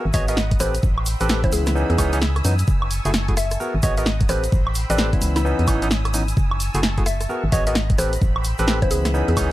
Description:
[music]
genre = UK garage, two-step garage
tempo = 130 BPM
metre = 4/4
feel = swing 63% on 16ths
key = F# dorian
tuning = A4 = 440 Hz
[part]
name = soft string machine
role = sustained chords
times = 0.0-9.5 s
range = F#5 to E6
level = -33 LUFS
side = equal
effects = ensemble chorus, sidechain pumping
[part]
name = barky tine electric piano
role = stabs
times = 0.0-9.5 s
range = E3 to C#5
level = -26 LUFS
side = equal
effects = dub echo
[part]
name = mallet-like synth pluck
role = melody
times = 0.1-9.5 s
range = E4 to E5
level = -28 LUFS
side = equal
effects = chorus, dub echo
[part]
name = organ-like FM bass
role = bass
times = 0.1-9.5 s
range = F#1 to F#2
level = -22 LUFS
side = equal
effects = sidechain pumping
[part]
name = electronic kick drum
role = drums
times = 0.1-9.5 s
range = none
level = -21 LUFS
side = equal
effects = none
[part]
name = punchy analog drum machine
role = drums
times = 0.1-9.5 s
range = hi-hat, rim click, snare drum, woodblock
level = -25 LUFS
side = equal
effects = none
[part]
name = tube shaker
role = percussion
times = 0.1-9.5 s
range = none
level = -34 LUFS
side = right 1 dB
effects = none
[sound]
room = little or no reverb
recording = none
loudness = -18 LUFS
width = side -15 dB against mid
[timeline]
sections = 0.0-9.5 A section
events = none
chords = 0.0 G#m9; 0.6 Am9; 1.5 C#m9; 2.7 F#m9; 3.6 G#m9; 4.3 Am9; 5.2 C#m9; 6.4 F#m9; 7.3 G#m9; 8.0 Am9; 8.9 C#m9

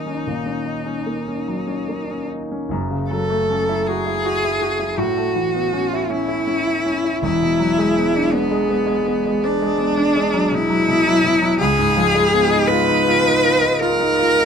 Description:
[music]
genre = classical, impressionist duo for cello and grand piano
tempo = 48-56 BPM (dotted quarters)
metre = 12/8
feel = rubato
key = unclear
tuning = A4 = 441 Hz
[part]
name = clear cello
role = melody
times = 0.0-14.4 s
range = B3 to Cb5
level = -19 LUFS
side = left 1 dB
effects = none
[part]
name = clear concert grand piano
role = accompaniment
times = 0.0-14.4 s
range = E1 to F#4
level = -20 LUFS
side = equal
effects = none
[sound]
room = moderate studio reverb, RT60 0.8 s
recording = minimal, uncompressed stereo recording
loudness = -16 LUFS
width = side -7 dB against mid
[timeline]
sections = 0.0-2.7 A section; 2.7-14.4 B section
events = none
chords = 0.0 Ebm7; 2.7 F#m9; 5.0 Aadd9; 7.2 E9; 11.6 Db9

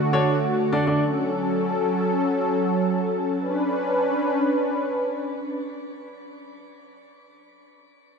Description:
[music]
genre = pop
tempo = free time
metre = none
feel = none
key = B minor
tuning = A4 = 440 Hz
[part]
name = warm analog pad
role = sustained chords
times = 0.0-6.5 s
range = D3 to B4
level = -22 LUFS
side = equal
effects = chorus, shimmer reverb
[part]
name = clear baby grand piano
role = accompaniment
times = 0.1-1.0 s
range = D4 to D5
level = -28 LUFS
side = left 1 dB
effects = shimmer reverb
[sound]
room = wet lush hall reverb, RT60 2.3 s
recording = dark, warm production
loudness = -21 LUFS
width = side -5 dB against mid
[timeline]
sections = 0.0-3.4 A section; 3.4-5.8 B section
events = none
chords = 0.0 D; 1.0 F#m; 3.4 Bmadd9

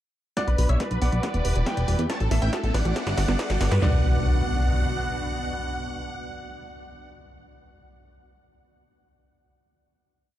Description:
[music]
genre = uplifting trance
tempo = 139 BPM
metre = 4/4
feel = straight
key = B minor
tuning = A4 = 440 Hz
[part]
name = big supersaw lead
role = melody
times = 0.4-7.1 s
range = A4 to A5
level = -32 LUFS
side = right 1 dB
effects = cassette tape, sidechain pumping, low-pass filter, tape echo
[part]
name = bright concert grand piano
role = second line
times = 0.4-7.1 s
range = D5 to G5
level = -37 LUFS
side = right 1 dB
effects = digital delay
[part]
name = plucky unison lead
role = second line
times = 0.4-7.1 s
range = A5 to A6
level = -40 LUFS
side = left 1 dB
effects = wide subtle chorus, sidechain pumping, tape echo
[part]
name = filtered supersaw swell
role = sustained chords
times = 0.4-7.1 s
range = B2 to B4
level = -35 LUFS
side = equal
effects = vintage 12-bit sampler grit, sidechain pumping
[part]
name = wide unison pluck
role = arpeggios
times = 0.4-4.0 s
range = B3 to B4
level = -34 LUFS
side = right 4 dB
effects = vintage 12-bit sampler grit, sidechain pumping, tape echo
[part]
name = punchy analog drum machine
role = drums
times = 0.4-3.9 s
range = handclaps, kick drum, snare drum, toms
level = -29 LUFS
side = equal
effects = high-pass filter on kick, high-pass filter on snare, high-pass filter on toms, high-pass filter on room
[part]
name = punchy analog drum machine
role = drums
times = 0.4-3.8 s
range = hi-hat, snare drum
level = -34 LUFS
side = left 1 dB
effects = high-pass filter on snare, high-pass filter on hats, high-pass filter on room
[part]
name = riser and impact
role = sound effects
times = 1.7-7.1 s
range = none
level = -30 LUFS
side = equal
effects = none
[part]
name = plucky analog bass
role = bass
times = 0.5-5.1 s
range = E1 to G2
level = -23 LUFS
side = equal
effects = sidechain pumping
[sound]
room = little or no reverb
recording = dark, warm production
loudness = -22 LUFS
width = side -13 dB against mid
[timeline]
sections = 0.4-3.8 build; 3.8-7.3 final chord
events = build-up 0.4-3.8; drum fill 0.4-3.8; filter sweep on supersaw synth 0.4-3.8; filter sweep on synth arpeggio sound 0.4-3.8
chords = 0.4 Bm; 1.2 Em; 2.1 A; 3.0 G; 3.8 Bm

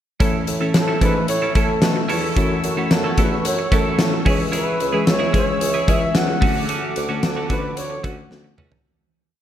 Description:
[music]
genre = 1980s-style pop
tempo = 111 BPM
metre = 4/4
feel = straight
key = unclear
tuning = A4 = 440 Hz
[part]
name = mellow FM electric piano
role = accompaniment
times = 0.2-8.9 s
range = D3 to A4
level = -24 LUFS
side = left 3 dB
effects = chorus
[part]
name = warm analog pad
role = sustained chords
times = 0.2-8.8 s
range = G#4 to E6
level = -29 LUFS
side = right 1 dB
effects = chorus
[part]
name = twelve-string electric guitar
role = riff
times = 0.2-8.8 s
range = A3 to A4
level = -27 LUFS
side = right 4 dB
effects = wide subtle chorus, digital delay
[part]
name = warm bassoon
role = bass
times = 0.2-8.8 s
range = C#2 to B2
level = -27 LUFS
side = right 1 dB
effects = none
[part]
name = big rock drum kit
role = drums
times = 0.2-8.8 s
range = hi-hat, kick drum, snare drum, toms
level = -20 LUFS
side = equal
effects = gated reverb
[part]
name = breathy flugelhorn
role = melody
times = 0.8-8.6 s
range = F#4 to F#5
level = -25 LUFS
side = equal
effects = none
[sound]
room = moderate plate reverb, RT60 1.7 s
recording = bright 1980s-style digital production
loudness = -17 LUFS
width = side -10 dB against mid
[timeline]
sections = 0.2-8.9 pre-chorus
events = fade-out 6.7-8.9; drum fill 8.3-8.9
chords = 0.2 A; 2.4 F#m7; 4.3 C#m; 6.4 Dmaj7

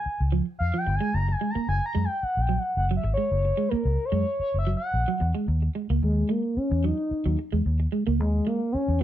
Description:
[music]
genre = funk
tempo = 110 BPM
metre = 4/4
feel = straight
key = unclear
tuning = A4 = 439 Hz
[part]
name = expressive synth lead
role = melody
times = 0.0-9.0 s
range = Ab3 to Bb5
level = -27 LUFS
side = left 1 dB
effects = chorus, plate reverb
[part]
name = vintage muted fingered electric bass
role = bass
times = 0.1-9.0 s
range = Gb1 to Gb2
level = -24 LUFS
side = equal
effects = none
[part]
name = electric guitar at the edge of break-up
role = riff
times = 0.3-9.0 s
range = F3 to Bb3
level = -29 LUFS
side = right 5 dB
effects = analog chorus
[sound]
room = light reverb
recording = dark, warm production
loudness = -23 LUFS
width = side -12 dB against mid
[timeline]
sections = 0.0-5.5 A section; 5.5-9.0 B section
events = analog synth lead solo 0.0-5.5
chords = 0.0 Db; 1.1 Gbadd9; 5.5 N.C.

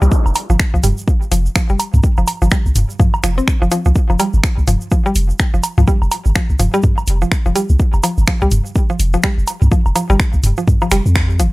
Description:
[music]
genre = minimal techno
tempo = 125 BPM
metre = 4/4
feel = swing 60% on 16ths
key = unclear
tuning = A4 = 440 Hz
[part]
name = mallet-like synth pluck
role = riff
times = 0.0-11.4 s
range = F3 to C4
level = -21 LUFS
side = equal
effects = chorus, sidechain pumping, tape echo
[part]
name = punchy sub bass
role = bass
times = 0.0-11.5 s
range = F1 to F2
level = -14 LUFS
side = equal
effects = sidechain pumping
[part]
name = egg shaker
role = percussion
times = 0.0-11.5 s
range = none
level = -30 LUFS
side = right 4 dB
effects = none
[part]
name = electronic kick drum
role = drums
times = 0.1-11.3 s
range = none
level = -15 LUFS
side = equal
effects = none
[part]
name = electronic woodblock and toms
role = percussion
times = 0.3-10.9 s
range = none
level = -19 LUFS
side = right 1 dB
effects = analog delay
[part]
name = house drum kit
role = drums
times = 0.4-11.5 s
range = finger snaps, hi-hat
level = -20 LUFS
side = equal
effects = none
[sound]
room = little or no reverb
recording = dry, gritty hardware recording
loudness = -12 LUFS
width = side -21 dB against mid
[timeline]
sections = 0.0-11.5 A section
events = band accent 11.2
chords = 0.0 F5

